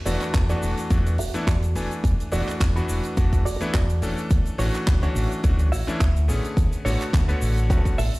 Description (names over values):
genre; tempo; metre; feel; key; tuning
nu-disco, nu disco; 106 BPM; 4/4; swing 55% on 16ths; E mixolydian; A4 = 441 Hz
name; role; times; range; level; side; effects
bright electric grand piano; accompaniment; 0.1-7.9 s; D3 to G#5; -28 LUFS; left 1 dB; sidechain pumping, tape echo
direct-recorded clean electric guitar; riff; 0.1-8.1 s; D4 to E5; -33 LUFS; right 2 dB; wide subtle chorus, low-pass filter, tape echo
fingered electric bass with an envelope filter; bass; 0.1-8.2 s; E1 to E2; -23 LUFS; equal; none
tight funk drum kit; drums; 0.1-8.2 s; handclaps, hi-hat, shaker; -34 LUFS; right 2 dB; small room ambience
electronic kick drum; drums; 0.3-8.0 s; none; -21 LUFS; equal; small room ambience
room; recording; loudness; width
small room ambience; played on a big sound system in a bare room, stone room reverb; -20 LUFS; side -22 dB against mid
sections
0.0-8.2 A section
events
filter sweep on clean electric guitar 0.0-8.2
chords
0.0 E9sus4; 4.3 Dmaj9